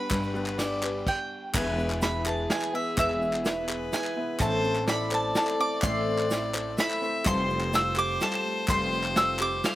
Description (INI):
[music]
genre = indie folk with a building arrangement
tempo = 126 BPM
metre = 3/4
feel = straight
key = unclear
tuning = A4 = 440 Hz
[part]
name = bowl-back mandolin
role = melody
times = 0.0-9.8 s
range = E5 to E6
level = -29 LUFS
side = right 1 dB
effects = none
[part]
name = rich fiddle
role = second line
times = 0.0-9.8 s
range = G#4 to E5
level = -32 LUFS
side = left 2 dB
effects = slapback echo
[part]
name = bright upright piano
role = accompaniment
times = 0.0-9.8 s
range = F1 to E5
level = -39 LUFS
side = left 2 dB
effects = none
[part]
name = picked twelve-string acoustic guitar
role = accompaniment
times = 0.0-9.8 s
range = A2 to C5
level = -33 LUFS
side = left 3 dB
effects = slapback echo
[part]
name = handpan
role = arpeggios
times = 0.0-9.8 s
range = G3 to A4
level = -35 LUFS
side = right 5 dB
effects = slapback echo
[part]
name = upright bass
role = bass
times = 0.1-9.6 s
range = E1 to A1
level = -34 LUFS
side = equal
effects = none
[part]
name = vintage brush drum kit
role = drums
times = 0.1-9.7 s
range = crash cymbal, hi-hat, kick drum, ride cymbal, snare drum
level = -30 LUFS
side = equal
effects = none
[part]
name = egg shaker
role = percussion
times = 0.1-9.8 s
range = none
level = -44 LUFS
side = right 4 dB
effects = none
[part]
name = group handclap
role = percussion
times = 0.1-9.5 s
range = none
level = -35 LUFS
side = left 1 dB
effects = none
[sound]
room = little or no reverb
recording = recorded outdoors, with no room sound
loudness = -24 LUFS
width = side -15 dB against mid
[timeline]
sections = 0.0-1.5 A section; 1.5-9.8 B section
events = none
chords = 0.0 G; 1.5 E; 4.4 Am; 7.3 Fadd9